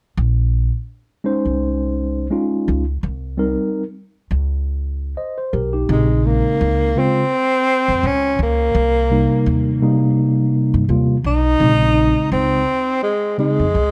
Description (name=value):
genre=hip hop, jazz-hop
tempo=84 BPM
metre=4/4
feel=swing 58% on 16ths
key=Bb dorian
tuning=A4 = 439 Hz
part: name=upright bass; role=bass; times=0.2-13.9 s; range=Bb1 to G2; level=-22 LUFS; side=equal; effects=none
part: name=mellow tine electric piano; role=accompaniment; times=1.2-13.7 s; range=C3 to Eb5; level=-20 LUFS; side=equal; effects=none
part: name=breathy tenor saxophone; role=melody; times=5.9-13.9 s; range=Ab3 to Eb4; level=-20 LUFS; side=equal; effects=tape echo
room=moderate small room reverb, RT60 0.5 s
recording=dark, warm production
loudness=-18 LUFS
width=mono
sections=0.2-5.9 A section; 5.9-13.9 B section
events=none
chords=0.2 Bbm11; 3.0 Cm7; 5.9 Bbm11; 8.7 Cm7; 11.6 Bbm11